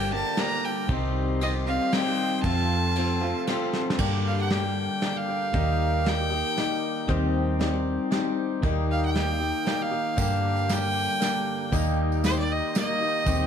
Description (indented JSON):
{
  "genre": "folk rock and heartland rock",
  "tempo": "116 BPM",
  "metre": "3/4",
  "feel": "straight",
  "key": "G minor",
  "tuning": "A4 = 440 Hz",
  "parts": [
    { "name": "clear fiddle", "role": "melody", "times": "0.0-13.5 s", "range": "C5 to Bb5", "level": "-29 LUFS", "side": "right 1 dB", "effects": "analog delay" },
    { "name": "picked swing-style acoustic guitar", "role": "accompaniment", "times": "0.0-13.5 s", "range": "G2 to A4", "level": "-32 LUFS", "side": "left 5 dB", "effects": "none" },
    { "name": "tonewheel organ", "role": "sustained chords", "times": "0.0-13.5 s", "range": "D4 to C6", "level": "-39 LUFS", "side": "right 1 dB", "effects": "slow rotary speaker" },
    { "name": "electric guitar through a small old amp", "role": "riff", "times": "0.0-13.5 s", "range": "F2 to G4", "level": "-30 LUFS", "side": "left 1 dB", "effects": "none" },
    { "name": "vintage muted fingered electric bass", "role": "bass", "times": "0.0-13.5 s", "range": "G1 to G2", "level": "-27 LUFS", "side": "right 1 dB", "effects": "none" },
    { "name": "soft brush drum kit", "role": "drums", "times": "0.4-13.4 s", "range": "crash cymbal, hi-hat, kick drum, ride cymbal, snare drum", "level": "-30 LUFS", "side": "right 1 dB", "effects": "none" },
    { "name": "tambourine", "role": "percussion", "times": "10.2-13.4 s", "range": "none", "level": "-39 LUFS", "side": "right 10 dB", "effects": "none" }
  ],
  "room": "light reverb",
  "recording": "none",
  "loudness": "-23 LUFS",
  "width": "side -8 dB against mid",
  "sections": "0.0-4.0 A section; 4.0-13.5 B section",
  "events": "drum fill 3.7; fiddle solo 4.0-13.5",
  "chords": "0.0 Gm; 0.9 Cm; 2.4 F; 4.0 Gm; 5.5 Eb; 7.1 Cm/Eb; 8.6 Eb; 10.2 Gm; 11.7 Eb"
}